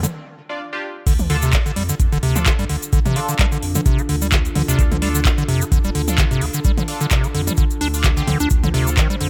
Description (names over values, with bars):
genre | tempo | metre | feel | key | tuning
acid house | 129 BPM | 4/4 | swing 55% on 16ths | D minor | A4 = 440 Hz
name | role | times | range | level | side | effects
warbly tape-like pad | sustained chords | 1.8-9.3 s | D3 to D5 | -32 LUFS | equal | chorus, built-in reverb, sidechain pumping
acid bass, square | riff | 0.0-9.3 s | C3 to D4 | -24 LUFS | equal | none
saturated sub bass | bass | 0.0-9.3 s | D1 to G2 | -26 LUFS | equal | sidechain pumping
electro analog drum machine | drums | 0.0-9.3 s | crash cymbal, handclaps, hi-hat, toms | -26 LUFS | equal | overdrive
cabasa | percussion | 0.0-9.2 s | none | -30 LUFS | equal | none
band-passed chord stab | stabs | 0.5-8.9 s | D4 to D5 | -33 LUFS | equal | phaser, lush chorus, dub echo
electronic kick drum | drums | 1.1-9.1 s | none | -20 LUFS | equal | overdrive
room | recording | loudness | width
digital ambience | none | -18 LUFS | mono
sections
0.0-1.1 A section; 1.1-9.3 B section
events
break 0.1-1.1; drop 1.1-9.3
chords
0.0 Dm